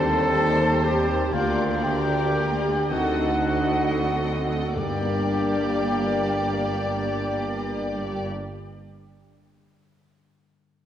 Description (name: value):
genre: classical, slow romantic movement for symphony orchestra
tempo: 31-41 BPM (dotted quarters)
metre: 6/8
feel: rubato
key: G minor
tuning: A4 = 443 Hz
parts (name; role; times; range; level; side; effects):
- clear studio violin section; melody; 0.0-8.3 s; C5 to Eb5; -33 LUFS; left 5 dB; none
- mellow clarinet; second line; 0.0-8.3 s; A3 to C4; -37 LUFS; equal; none
- rich studio violin section; second line; 0.0-8.3 s; G4 to C5; -36 LUFS; left 2 dB; none
- small flute group; second line; 0.0-8.3 s; F5 to A5; -32 LUFS; equal; none
- warm oboe; second line; 0.0-8.3 s; D5 to A5; -33 LUFS; equal; none
- rich studio viola section; accompaniment; 0.0-8.3 s; G3 to A4; -32 LUFS; right 2 dB; none
- dark French horn section; sustained chords; 0.0-8.3 s; G3 to Eb4; -31 LUFS; left 3 dB; none
- concert harp; arpeggios; 0.0-8.7 s; G2 to D5; -34 LUFS; left 6 dB; none
- clear trumpet section; stabs; 0.0-8.3 s; F4 to A4; -28 LUFS; right 1 dB; none
- rich studio cello section; bass; 0.0-8.3 s; D2 to G2; -30 LUFS; right 2 dB; none
- rich studio double bass section; bass; 0.0-8.3 s; G1 to Eb2; -30 LUFS; right 2 dB; none
- timpani; percussion; 4.8-8.3 s; G2; -38 LUFS; equal; none
room: wet concert hall reverb, RT60 2.1 s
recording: worn, warbling old tape, cassette tape, warbly pitch drift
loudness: -21 LUFS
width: side -10 dB against mid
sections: 0.0-4.8 A section; 4.8-8.3 B section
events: slowing down 0.0-4.8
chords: 0.0 Cm/Eb; 1.3 Gm/D; 2.9 D7b9; 4.8 Gm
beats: | 1.33 2.91 | 4.75 6.52